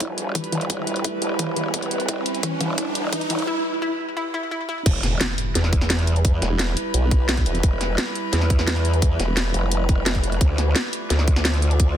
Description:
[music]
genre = dark technical drum and bass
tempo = 173 BPM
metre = 4/4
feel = straight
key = E phrygian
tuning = A4 = 440 Hz
[part]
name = metallic inharmonic drone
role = sustained chords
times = 0.0-12.0 s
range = G3 to D5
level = -29 LUFS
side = right 1 dB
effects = chorus, built-in reverb, sidechain pumping
[part]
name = analog pluck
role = arpeggios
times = 0.0-4.8 s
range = E3 to E4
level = -29 LUFS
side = left 2 dB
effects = chorus, sidechain pumping, ping-pong delay
[part]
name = growl bass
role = bass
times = 0.0-12.0 s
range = E1 to E2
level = -22 LUFS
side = equal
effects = chorus, tube saturation, sidechain pumping, high-pass filter
[part]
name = drum and bass drum kit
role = drums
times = 0.0-11.9 s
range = crash cymbal, hi-hat, snare drum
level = -24 LUFS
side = equal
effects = none
[part]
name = electronic kick drum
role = drums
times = 0.0-11.9 s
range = none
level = -20 LUFS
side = equal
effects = high-pass filter on kick
[part]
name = riser and impact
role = sound effects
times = 0.8-6.2 s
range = none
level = -29 LUFS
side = equal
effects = none
[part]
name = formant-sweep wobble bass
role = bass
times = 6.4-9.5 s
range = E1 to B1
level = -22 LUFS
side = equal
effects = chorus
[sound]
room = light reverb, digital ambience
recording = dense, heavily limited modern master, high-pass filter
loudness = -19 LUFS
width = side -10 dB against mid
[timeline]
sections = 0.0-4.9 A section; 4.9-12.0 B section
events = build-up 0.0-4.9; filter sweep on synth arpeggio sound 0.0-4.9; riser 0.8-3.5; drum fill 2.1-3.5; drop 4.9-12.0; impact 4.9-6.2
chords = 0.0 Em; 10.4 Dm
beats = 0.00 0.35 | 0.70 1.04 1.39 1.74 | 2.08 2.43 2.78 3.13 | 3.47 3.82 4.17 4.51 | 4.86 5.21 5.55 5.90 | 6.25 6.59 6.94 7.29 | 7.63 7.98 8.33 8.68 | 9.02 9.37 9.71 10.06 | 10.41 10.76 11.10 11.45 | 11.80

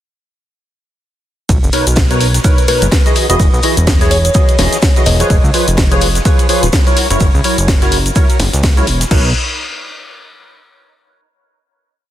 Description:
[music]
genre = piano house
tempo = 126 BPM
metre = 4/4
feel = swing 58% on 16ths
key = B major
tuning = A4 = 441 Hz
[part]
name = fat analog bass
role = bass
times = 1.5-9.3 s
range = D#1 to C#2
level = -14 LUFS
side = equal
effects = sidechain pumping
[part]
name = electronic kick drum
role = drums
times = 1.5-9.2 s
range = none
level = -13 LUFS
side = equal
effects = none
[part]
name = house drum kit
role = drums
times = 1.5-9.2 s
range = crash cymbal, hi-hat, ride cymbal, shaker, snare drum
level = -17 LUFS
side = left 1 dB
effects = none
[part]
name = shaker and snare drum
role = drums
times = 1.5-9.1 s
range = none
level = -28 LUFS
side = right 1 dB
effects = none
[part]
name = percussive organ stab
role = riff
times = 1.7-9.3 s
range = B2 to D#5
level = -16 LUFS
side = equal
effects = ensemble chorus, sidechain pumping, dub echo
[part]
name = buzzing kalimba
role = melody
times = 2.7-5.4 s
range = B4 to D#5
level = -20 LUFS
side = left 1 dB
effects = dub echo
[sound]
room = light reverb, small room ambience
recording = dense, heavily limited modern master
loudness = -9 LUFS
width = side -12 dB against mid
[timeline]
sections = 1.5-9.1 drop; 9.1-11.0 final chord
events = drop 1.5-9.1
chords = 1.5 Bmaj9; 3.2 Emaj9; 5.3 C#7/E#; 7.0 F#7; 9.1 Bmaj9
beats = | 1.49 1.97 2.44 2.92 | 3.40 3.87 4.35 4.82 | 5.30 5.78 6.25 6.73 | 7.21 7.68 8.16 8.63 | 9.11

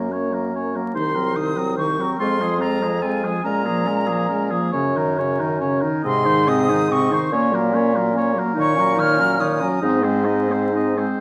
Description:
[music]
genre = classical, slow romantic movement for wind quintet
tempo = 47 BPM (dotted quarters)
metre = 6/8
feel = rubato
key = unclear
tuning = A4 = 439 Hz
[part]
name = warm oboe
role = second line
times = 0.0-11.2 s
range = F4 to Eb5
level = -28 LUFS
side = equal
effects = none
[part]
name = dark clarinet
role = accompaniment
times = 0.0-11.2 s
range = Ab3 to Eb4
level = -28 LUFS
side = equal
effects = none
[part]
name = mellow French horn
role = accompaniment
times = 0.0-11.2 s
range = C3 to C4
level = -28 LUFS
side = equal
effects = none
[part]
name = mellow bassoon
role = bass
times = 0.0-11.1 s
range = C2 to Bb2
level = -25 LUFS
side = equal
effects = none
[part]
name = silver concert flute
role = melody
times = 0.9-9.8 s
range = Ab5 to F6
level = -25 LUFS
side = equal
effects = none
[sound]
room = wet recital hall reverb, RT60 1.4 s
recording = vinyl crackle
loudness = -20 LUFS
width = mono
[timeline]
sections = 0.0-11.2 A section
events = none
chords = 0.0 Gb; 1.0 Cm7b5; 2.2 Fm; 3.5 Bbm7; 4.7 Ebm7/Gb; 6.1 Ab; 7.3 Gb/Bb; 8.6 Ebm7/Bb; 9.8 Ab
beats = 0.96 | 2.20 3.47 | 4.75 6.05 | 7.32 8.56 | 9.83

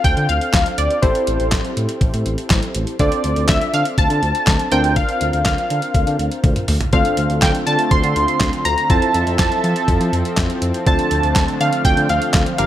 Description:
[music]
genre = synth-pop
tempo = 122 BPM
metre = 4/4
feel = straight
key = D minor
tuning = A4 = 440 Hz
[part]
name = funky polysynth comp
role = melody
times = 0.0-12.7 s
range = C5 to C6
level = -20 LUFS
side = equal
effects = chorus, digital delay, shimmer reverb
[part]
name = warm analog keys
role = accompaniment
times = 0.0-12.7 s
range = Bb3 to C5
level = -24 LUFS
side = equal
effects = chorus, shimmer reverb
[part]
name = smooth synth bass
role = bass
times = 0.0-12.7 s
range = G1 to F3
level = -21 LUFS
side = equal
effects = none
[part]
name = detuned 8-bit digital drum machine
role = drums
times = 0.0-12.7 s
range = handclaps, hi-hat, kick drum, snare drum, toms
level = -18 LUFS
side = equal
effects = none
[part]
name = warm analog pad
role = sustained chords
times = 6.9-12.7 s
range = D3 to E5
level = -24 LUFS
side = equal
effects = chorus, shimmer reverb
[sound]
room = light reverb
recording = none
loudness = -15 LUFS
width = side -12 dB against mid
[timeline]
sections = 0.0-12.7 A section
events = drum fill 6.4-6.9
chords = 0.0 Dm7; 1.0 Am7; 3.0 Dm7; 4.7 Bbadd9/D; 6.9 Dm7; 8.9 Fmaj7; 10.9 Dm7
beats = 0.05 0.54 | 1.03 1.52 2.01 2.50 | 3.00 3.49 3.98 4.47 | 4.96 5.46 5.95 6.44 | 6.93 7.42 7.92 8.41 | 8.90 9.39 9.88 10.37 | 10.87 11.36 11.85 12.34

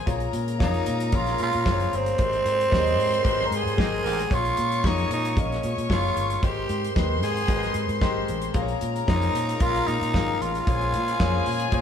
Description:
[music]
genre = disco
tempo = 113 BPM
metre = 4/4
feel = straight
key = Bb dorian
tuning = A4 = 441 Hz
[part]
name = rich chamber string section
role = second line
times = 0.0-11.8 s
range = Ab4 to Db6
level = -32 LUFS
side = left 2 dB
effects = none
[part]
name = warm concert grand piano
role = accompaniment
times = 0.0-11.8 s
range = Ab3 to Eb5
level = -30 LUFS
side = left 6 dB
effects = none
[part]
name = dark French horn section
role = sustained chords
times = 0.0-11.8 s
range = C3 to Bb4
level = -37 LUFS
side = right 3 dB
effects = none
[part]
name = fingered electric bass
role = bass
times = 0.1-11.8 s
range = Gb1 to Bb2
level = -28 LUFS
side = equal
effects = none
[part]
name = damped 70s drum kit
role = drums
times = 0.1-11.8 s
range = hi-hat, kick drum, snare drum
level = -27 LUFS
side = equal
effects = none
[part]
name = growling tenor saxophone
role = melody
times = 0.6-11.8 s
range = C4 to Bb4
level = -26 LUFS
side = right 2 dB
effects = none
[part]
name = warm horn section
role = stabs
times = 3.8-4.2 s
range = Bb3 to Bb4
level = -32 LUFS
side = right 5 dB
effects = none
[sound]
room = moderate stone room reverb, RT60 1.2 s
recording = band playing live in one room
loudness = -21 LUFS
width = side -8 dB against mid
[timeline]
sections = 0.0-11.8 A section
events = band accent 2.2-4.3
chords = 0.1 Bbm7; 2.2 Abmaj9; 4.3 Bbm7; 6.4 Abmaj9; 8.5 Bbm7; 10.7 Bbm9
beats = | 0.07 0.60 1.13 1.66 | 2.19 2.72 3.25 3.78 | 4.31 4.84 5.37 5.90 | 6.43 6.96 7.49 8.02 | 8.54 9.07 9.60 10.13 | 10.66 11.19 11.72

